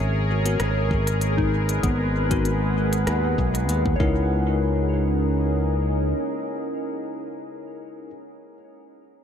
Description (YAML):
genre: ambient dub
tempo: 97 BPM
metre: 4/4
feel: swing 54% on 16ths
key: C# dorian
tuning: A4 = 440 Hz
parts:
  - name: deep dark ambient pad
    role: sustained chords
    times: 0.0-7.5 s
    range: G#3 to F#5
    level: -27 LUFS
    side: equal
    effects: chorus, built-in reverb
  - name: soft synth bell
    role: arpeggios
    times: 0.0-9.2 s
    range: B3 to C#5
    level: -33 LUFS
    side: left 2 dB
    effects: chorus, phaser, tape echo
  - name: modern bright fingered electric bass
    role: bass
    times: 0.0-6.1 s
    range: G#1 to D#2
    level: -23 LUFS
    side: equal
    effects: tube saturation
  - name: drifting glass-harmonics texture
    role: texture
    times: 0.0-4.3 s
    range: G#4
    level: -39 LUFS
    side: right 3 dB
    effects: chorus, built-in reverb
  - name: bell-like tine electric piano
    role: stabs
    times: 0.5-8.1 s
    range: B3 to A#4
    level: -32 LUFS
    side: left 6 dB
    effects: dub echo
  - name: organic electronic drum kit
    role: drums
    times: 0.5-3.8 s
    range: hi-hat, rim click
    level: -34 LUFS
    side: left 1 dB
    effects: dub echo
  - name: electronic kick drum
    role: drums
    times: 0.9-4.1 s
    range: none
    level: -26 LUFS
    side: equal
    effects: none
room: light reverb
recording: none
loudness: -20 LUFS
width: side -8 dB against mid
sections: 0.0-4.3 A section; 4.3-6.8 B section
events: none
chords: 0.0 G#m9; 4.0 C#m69